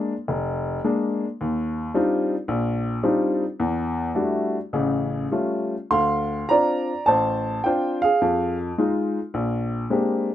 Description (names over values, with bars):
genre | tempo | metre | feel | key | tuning
solo jazz | 107 BPM | 4/4 | swing 67% on 8ths, rubato | Bb major | A4 = 441 Hz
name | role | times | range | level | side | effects
clear upright piano | solo | 0.0-10.3 s | F1 to C6 | -21 LUFS | equal | none
room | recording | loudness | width
moderate small room reverb, RT60 0.5 s | rough home demo mix | -21 LUFS | side -12 dB against mid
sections
0.0-10.3 A section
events
none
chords
0.0 Bb7; 1.4 Ebmaj13; 3.6 Em11; 4.7 Aaug7; 5.9 Dm7; 8.2 Fm7; 9.3 Bb13